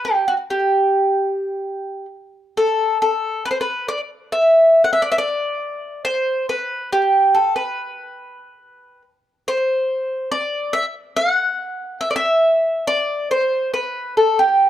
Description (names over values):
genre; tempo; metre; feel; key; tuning
fado; 70 BPM; 4/4; uneven beats, rubato; G major; A4 = 440 Hz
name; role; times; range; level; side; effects
mandolin; solo; 0.0-14.7 s; F#4 to F#5; -16 LUFS; equal; slapback echo
room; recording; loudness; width
small room ambience; dry, close 1970s-style studio recording; -17 LUFS; side -11 dB against mid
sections
0.0-2.5 A section; 2.5-14.7 A section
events
none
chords
none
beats
0.69 1.61 | 2.53 3.42 4.31 5.19 | 6.05 6.92 7.79 8.64 | 9.48 10.31 11.16 12.01 | 12.87 13.73 14.62